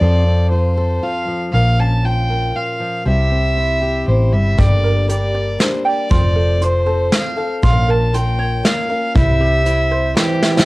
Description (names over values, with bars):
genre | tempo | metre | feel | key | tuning
indie folk with a building arrangement | 118 BPM | 3/4 | straight | F major | A4 = 439 Hz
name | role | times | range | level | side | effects
warm fiddle | melody | 0.0-10.6 s | G4 to A5 | -20 LUFS | equal | cassette tape, plate reverb
fingerpicked steel-string acoustic guitar | accompaniment | 0.0-6.1 s | F2 to Bb4 | -24 LUFS | left 1 dB | cassette tape
hollow-body short-scale fingered electric bass | bass | 0.0-10.1 s | F1 to F2 | -16 LUFS | equal | none
picked steel-string acoustic guitar | accompaniment | 4.6-10.7 s | G2 to C5 | -24 LUFS | left 3 dB | cassette tape
ukulele | arpeggios | 4.6-10.7 s | E4 to G5 | -23 LUFS | right 3 dB | cassette tape, plate reverb
soft brush drum kit | drums | 4.6-10.7 s | hi-hat, kick drum, snare drum | -16 LUFS | equal | none
warm trombone | second line | 10.2-10.6 s | E3 | -19 LUFS | right 3 dB | cassette tape
room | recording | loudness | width
light reverb | home recording on cassette | -14 LUFS | side -20 dB against mid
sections
0.0-10.7 A section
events
drum fill 10.4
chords
0.0 F; 1.5 Bbm; 3.1 C; 4.6 Gm; 6.1 F; 7.6 Bbm; 9.2 C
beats
| 0.00 0.51 1.02 | 1.53 2.04 2.55 | 3.06 3.57 4.08 | 4.58 5.09 5.60 | 6.11 6.62 7.13 | 7.63 8.14 8.65 | 9.16 9.67 10.17